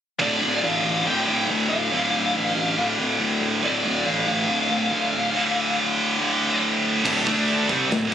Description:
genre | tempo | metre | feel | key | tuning
heavy metal | 140 BPM | 4/4 | straight | D minor | A4 = 440 Hz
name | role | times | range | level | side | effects
smooth overdriven lead guitar | melody | 0.2-6.6 s | D5 to G5 | -26 LUFS | left 2 dB | none
heavy high-gain guitar | riff | 0.2-8.1 s | D2 to D4 | -22 LUFS | right 4 dB | distortion
high-gain distorted guitar | riff | 0.2-8.1 s | D2 to D4 | -28 LUFS | left 13 dB | distortion
fuzz picked electric bass | bass | 0.2-8.1 s | D1 to D2 | -29 LUFS | left 1 dB | overdrive
high-gain distorted guitar | riff | 7.0-8.1 s | D2 to D4 | -28 LUFS | left 2 dB | distortion
modern studio drum kit | drums | 7.1-8.1 s | china cymbal, crash cymbal, kick drum, snare drum | -27 LUFS | left 1 dB | none
room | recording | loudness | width
little or no reverb | recorded on a phone in the room, studio ambience, compression | -19 LUFS | side -9 dB against mid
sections
0.2-7.0 A section; 7.0-8.1 B section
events
none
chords
0.2 Dm; 7.0 D5

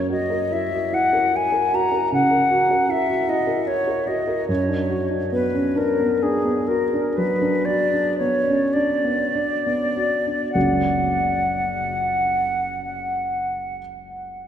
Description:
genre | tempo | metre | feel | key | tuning
classical, romantic duo for flute and grand piano | 31-52 BPM (dotted quarters) | 12/8 | rubato | F# major | A4 = 440 Hz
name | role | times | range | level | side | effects
silver concert flute | melody | 0.0-13.8 s | G#4 to A#5 | -21 LUFS | left 1 dB | none
warm concert grand piano | accompaniment | 0.0-14.5 s | F#1 to A#4 | -23 LUFS | right 1 dB | none
room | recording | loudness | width
wet cathedral reverb, RT60 5.6 s | in a vast, echoing space | -19 LUFS | side -9 dB against mid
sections
0.0-10.5 A section; 10.5-14.5 B section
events
slowing down 1.3-10.5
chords
0.0 F#7; 4.5 Bm/F#; 10.5 F#

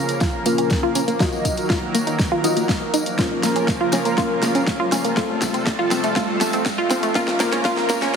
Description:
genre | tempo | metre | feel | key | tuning
progressive house | 121 BPM | 4/4 | straight | Bb harmonic minor | A4 = 440 Hz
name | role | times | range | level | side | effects
lush unison pad | sustained chords | 0.0-8.2 s | C3 to F5 | -25 LUFS | right 1 dB | chorus, sidechain pumping
deep mellow chord stab | stabs | 0.0-8.1 s | A3 to Eb5 | -25 LUFS | left 1 dB | chorus, phaser, sidechain pumping, ping-pong delay
riser | sound effects | 1.1-8.2 s | none | -33 LUFS | right 1 dB | none
deep house drum kit | drums | 0.1-8.1 s | hi-hat, snare drum | -25 LUFS | equal | overdrive, studio reverb
tambourine | percussion | 0.1-8.2 s | none | -32 LUFS | left 3 dB | none
analog pluck | arpeggios | 0.2-8.1 s | A3 to F4 | -22 LUFS | equal | chorus, phaser, sidechain pumping, ping-pong delay
electronic kick drum | drums | 0.2-7.7 s | none | -25 LUFS | equal | studio reverb
room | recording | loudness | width
wet scoring stage reverb, RT60 1.5 s, digital ambience | heavily compressed radio sound, high-pass filter | -18 LUFS | side -6 dB against mid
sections
0.0-8.2 A section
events
build-up 0.0-8.2; drum fill 0.0-8.2; filter sweep on synth arpeggio sound 0.0-8.2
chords
0.0 Bbm; 1.2 Ebmadd9; 3.2 Bbm; 5.2 F; 7.2 Bbm

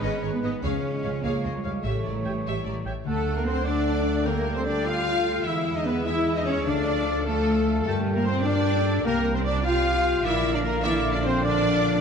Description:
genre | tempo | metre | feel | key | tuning
cinematic, heroic adventure film score | 100 BPM (dotted quarters) | 12/8 | straight | unclear | A4 = 440 Hz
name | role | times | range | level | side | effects
rich symphonic violin section | melody | 0.0-12.0 s | A4 to F5 | -33 LUFS | left 4 dB | none
mellow hollow large flute ensemble | second line | 0.0-12.0 s | A4 to F5 | -36 LUFS | left 2 dB | none
warm symphonic violin section | second line | 0.0-12.0 s | A4 to F5 | -36 LUFS | left 2 dB | none
warm symphonic viola section | accompaniment | 0.0-12.0 s | E3 to Ab4 | -33 LUFS | right 1 dB | none
mellow French horn section | sustained chords | 0.0-12.0 s | Eb3 to F4 | -30 LUFS | left 6 dB | none
warm trombone section | sustained chords | 0.0-12.0 s | Bb2 to C4 | -34 LUFS | right 4 dB | none
concert harp | arpeggios | 0.0-12.0 s | G2 to A5 | -34 LUFS | left 7 dB | none
warm trumpet section | stabs | 0.0-12.0 s | Bb3 to A5 | -32 LUFS | equal | none
clear symphonic cello section | bass | 0.0-12.0 s | G3 to F4 | -31 LUFS | right 2 dB | none
rich symphonic double bass section | bass | 0.0-12.0 s | Ab1 to G2 | -29 LUFS | right 3 dB | none
mellow clarinet | second line | 0.4-12.0 s | G4 to C#5 | -38 LUFS | left 2 dB | none
mellow cor anglais | second line | 0.4-12.0 s | Eb5 to G5 | -37 LUFS | right 3 dB | none
room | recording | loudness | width
wet scoring stage reverb, RT60 2.0 s | dark, warm production | -22 LUFS | side -6 dB against mid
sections
0.0-3.1 A section; 3.1-12.0 B section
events
none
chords
0.0 Abm; 0.6 Db; 1.8 A7; 3.1 D; 4.3 Gmadd9/D; 5.5 E; 6.7 Dm; 7.9 Gm; 9.1 Csus4; 10.2 Bb

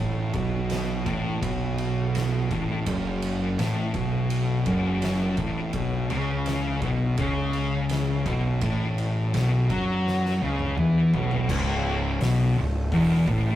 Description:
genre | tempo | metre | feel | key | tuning
stoner and doom metal | 84 BPM | 4/4 | straight | unclear | A4 = 440 Hz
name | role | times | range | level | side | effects
thick fuzz guitar | riff | 0.0-13.6 s | C#2 to F#3 | -26 LUFS | left 2 dB | distortion
thick fuzz guitar | riff | 0.0-13.6 s | C#2 to F#3 | -29 LUFS | right 2 dB | distortion
fuzz picked electric bass | bass | 0.0-13.6 s | C#1 to F#2 | -29 LUFS | right 1 dB | overdrive
oversized low-tuned drum kit | drums | 0.3-13.4 s | crash cymbal, hi-hat, kick drum, ride cymbal, snare drum, toms | -33 LUFS | right 1 dB | none
room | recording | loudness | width
moderate small room reverb, RT60 0.6 s | rough rehearsal-room recording, tube saturation | -22 LUFS | side -12 dB against mid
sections
0.0-11.5 A section; 11.5-13.6 B section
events
drum fill 10.1-11.5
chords
0.0 F#madd11; 5.7 B5; 11.5 C#m

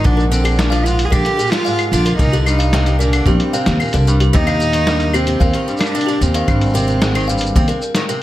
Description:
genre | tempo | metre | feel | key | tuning
folktronica | 112 BPM | 4/4 | straight | Bb mixolydian | A4 = 440 Hz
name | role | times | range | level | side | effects
warm cello | melody | 0.0-8.1 s | C4 to Ab4 | -20 LUFS | right 1 dB | tape echo
picked twelve-string acoustic guitar | arpeggios | 0.0-8.2 s | G2 to F3 | -22 LUFS | equal | tape echo
upright bass | bass | 0.1-7.7 s | Ab1 to Eb2 | -16 LUFS | equal | none
kick drum | drums | 0.1-7.7 s | none | -18 LUFS | equal | none
lo-fi sampler-style drum kit | drums | 0.1-8.2 s | cabasa, claves, hi-hat, snare drum | -22 LUFS | left 1 dB | none
music box | second line | 0.2-8.0 s | G4 to F5 | -24 LUFS | left 2 dB | tape echo
room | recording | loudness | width
small room ambience | vinyl crackle | -13 LUFS | side -14 dB against mid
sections
0.0-8.2 A section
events
none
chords
0.1 Bb7; 2.2 Cm9; 4.3 Eb6; 6.5 Abmaj7

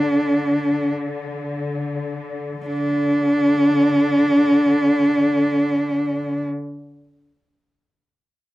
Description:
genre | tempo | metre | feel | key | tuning
caucasian folk, Caucasian lament | free time | none | none | unclear | A4 = 435 Hz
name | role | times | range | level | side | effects
rich cello | melody | 0.0-6.4 s | D4 | -17 LUFS | equal | none
bright symphonic cello section | drone | 0.0-6.4 s | D3 | -26 LUFS | left 3 dB | none
room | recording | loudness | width
light reverb | dry, close 1970s-style studio recording | -17 LUFS | side -17 dB against mid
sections
0.0-2.7 A section; 2.7-8.5 B section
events
slowing down 0.0-2.7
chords
none

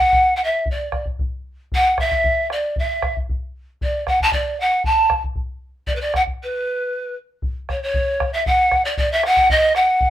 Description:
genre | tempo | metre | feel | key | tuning
andean folk, Andean ensemble | 116 BPM | 2/4 | straight | unclear | A4 = 441 Hz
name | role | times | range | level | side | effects
breathy mellow pan flute | melody | 0.0-10.1 s | B4 to A5 | -17 LUFS | equal | none
bombo | percussion | 0.0-10.1 s | none | -25 LUFS | equal | none
room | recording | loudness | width
light reverb | band playing live in one room | -17 LUFS | side -12 dB against mid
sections
0.0-7.4 A section; 7.4-10.1 B section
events
speeding up 0.0-10.1; break 6.4-7.4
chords
none

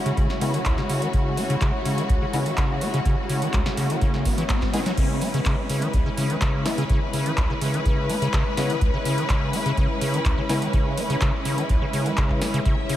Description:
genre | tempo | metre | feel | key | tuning
acid house | 125 BPM | 4/4 | straight | C# minor pentatonic | A4 = 436 Hz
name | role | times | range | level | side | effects
rich studio string section | sustained chords | 0.0-13.0 s | G#3 to E5 | -28 LUFS | left 1 dB | sidechain pumping
ethereal airy pad | texture | 0.0-13.0 s | E4 to B5 | -34 LUFS | left 1 dB | ensemble chorus, built-in reverb, sidechain pumping
acid bass, square | riff | 0.1-13.0 s | C#2 to B3 | -26 LUFS | equal | overdrive, cassette tape, diffuse ambient delay
electro analog drum machine | drums | 0.1-13.0 s | crash cymbal, handclaps, hi-hat, snare drum | -31 LUFS | right 1 dB | none
electronic kick drum | drums | 0.2-12.8 s | none | -23 LUFS | equal | none
percussive organ stab | stabs | 0.4-10.7 s | G#3 to E4 | -35 LUFS | left 2 dB | none
riser | sound effects | 2.7-5.0 s | none | -36 LUFS | equal | none
room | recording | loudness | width
moderate huge ambient reverb, RT60 8.2 s | dreamy mix soaked in reverb | -20 LUFS | side -12 dB against mid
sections
0.0-5.0 A section; 5.0-13.0 B section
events
filter sweep on acid bass 0.0-5.0; riser 2.7-5.0; drop 5.0-13.0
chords
0.0 C#m7

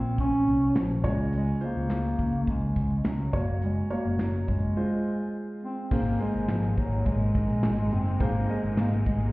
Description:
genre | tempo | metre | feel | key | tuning
piano-driven pop | 105 BPM | 4/4 | straight | unclear | A4 = 440 Hz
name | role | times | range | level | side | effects
breathy bass clarinet | melody | 0.0-9.2 s | F3 to Db4 | -28 LUFS | equal | none
warm grand piano | accompaniment | 0.0-9.3 s | Ab2 to Eb5 | -33 LUFS | right 1 dB | none
picked electric bass | bass | 0.0-9.3 s | Gb1 to Db2 | -28 LUFS | equal | none
modern studio drum kit | drums | 0.2-9.3 s | crash cymbal, handclaps, hi-hat, kick drum, snare drum | -30 LUFS | equal | none
rich studio string section | sustained chords | 5.9-9.3 s | C3 to Eb4 | -39 LUFS | left 1 dB | none
room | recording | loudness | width
light reverb, studio ambience | heard muffled through a wall, stone room reverb, EQ | -24 LUFS | side -21 dB against mid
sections
0.0-5.9 A section; 5.9-9.3 B section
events
break 4.8-5.9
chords
0.0 Bbm; 1.0 Db; 3.3 Gb; 4.8 Fm; 5.9 Abadd9

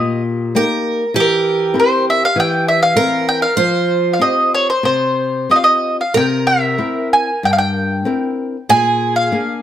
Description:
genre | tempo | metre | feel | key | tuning
fado-style ballad | 89-101 BPM | 4/4 | rubato | unclear | A4 = 440 Hz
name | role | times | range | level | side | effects
mandolin | melody | 0.0-9.6 s | Bb4 to Ab5 | -15 LUFS | equal | plate reverb
picked twelve-string acoustic guitar | second line | 0.0-9.6 s | G4 to C5 | -20 LUFS | right 4 dB | slapback echo
flamenco guitar | accompaniment | 0.0-9.6 s | G2 to Bb4 | -19 LUFS | left 3 dB | none
room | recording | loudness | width
moderate small room reverb, RT60 0.6 s | none | -13 LUFS | side -11 dB against mid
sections
0.0-9.6 A section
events
none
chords
0.0 Eb; 1.1 C7/E; 3.6 Fsus2; 6.1 C7; 8.7 Bb7

